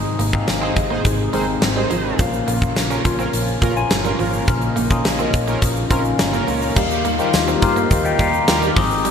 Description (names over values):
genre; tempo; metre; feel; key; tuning
1980s-style pop; 105 BPM; 4/4; straight; Eb major; A4 = 440 Hz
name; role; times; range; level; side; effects
barky tine electric piano; accompaniment; 0.0-9.1 s; Ab2 to C6; -21 LUFS; left 4 dB; phaser
brassy analog pad; sustained chords; 0.0-9.1 s; C3 to G5; -27 LUFS; right 1 dB; chorus, tremolo
fretless electric bass; bass; 0.0-9.1 s; G1 to G2; -26 LUFS; right 1 dB; analog chorus
electric guitar at the edge of break-up; riff; 0.2-9.1 s; F3 to Db4; -27 LUFS; right 5 dB; lush chorus, digital delay
huge arena drum kit; drums; 0.2-9.1 s; crash cymbal, hi-hat, kick drum, snare drum, tambourine; -20 LUFS; equal; gated reverb
analog synth brass; stabs; 0.6-8.7 s; Bb3 to C5; -27 LUFS; right 3 dB; chorus, digital delay
egg shaker; percussion; 2.2-9.1 s; none; -38 LUFS; right 12 dB; none
room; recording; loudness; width
moderate plate reverb, RT60 2.1 s; bright 1980s-style digital production; -16 LUFS; side -7 dB against mid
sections
0.0-6.8 A section; 6.8-9.1 B section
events
none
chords
0.0 Ab; 2.2 Bbm; 6.8 Ebadd9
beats
0.48 1.05 1.62 | 2.19 2.76 3.34 3.91 | 4.48 5.05 5.62 6.19 | 6.76 7.34 7.91 8.48 | 9.05